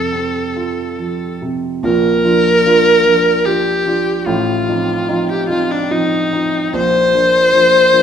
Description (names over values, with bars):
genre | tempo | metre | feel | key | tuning
classical, romantic duo for viola and grand piano | 68-78 BPM | 3/4 | rubato | Bb major | A4 = 440 Hz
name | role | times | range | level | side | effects
rich viola | melody | 0.0-8.0 s | D4 to C5 | -13 LUFS | left 1 dB | none
dark grand piano | accompaniment | 0.0-8.0 s | A1 to F4 | -18 LUFS | right 3 dB | none
room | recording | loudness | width
moderate recital hall reverb, RT60 1.3 s | minimal, uncompressed stereo recording | -12 LUFS | side -8 dB against mid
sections
0.0-1.8 A section; 1.8-8.0 B section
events
none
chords
0.0 F; 1.8 Bb; 4.3 F7/A; 6.7 Bb